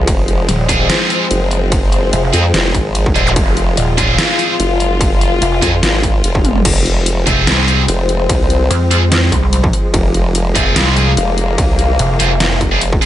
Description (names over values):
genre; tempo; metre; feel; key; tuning
heavy wobble dubstep; 146 BPM; 4/4; swing 54% on 16ths, half-time; F phrygian; A4 = 438 Hz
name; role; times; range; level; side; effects
warm studio string section; sustained chords; 0.0-13.1 s; F3 to F4; -19 LUFS; left 3 dB; sidechain pumping, low-pass filter
formant-sweep wobble bass; bass; 0.0-13.0 s; F1 to F2; -15 LUFS; equal; chorus, overdrive
dubstep drum kit; drums; 0.1-13.1 s; crash cymbal, hi-hat, ride cymbal, snare drum, toms; -19 LUFS; equal; none
electronic kick drum; drums; 0.1-13.0 s; none; -16 LUFS; equal; distortion
pulsing pluck wobble bass; bass; 0.5-12.6 s; Eb1 to F2; -14 LUFS; equal; chorus, overdrive
high-gain distorted guitar; stabs; 0.7-13.1 s; C4 to Ab4; -19 LUFS; right 2 dB; distortion, ping-pong delay
zap; sound effects; 3.3-3.4 s; none; -22 LUFS; equal; none
room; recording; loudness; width
digital ambience; nothing above 10.6 kHz; -11 LUFS; side -12 dB against mid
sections
0.0-6.7 A section; 6.7-13.1 A section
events
drop 0.0-6.7, 6.7-13.1; drum fill 6.3-6.7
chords
0.0 Fm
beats
| 0.07 0.49 0.90 1.31 | 1.72 2.13 2.54 2.95 | 3.36 3.77 4.18 4.59 | 5.01 5.42 5.83 6.24 | 6.65 7.06 7.47 7.88 | 8.29 8.71 9.12 9.53 | 9.94 10.35 10.76 11.17 | 11.58 11.99 12.40 12.81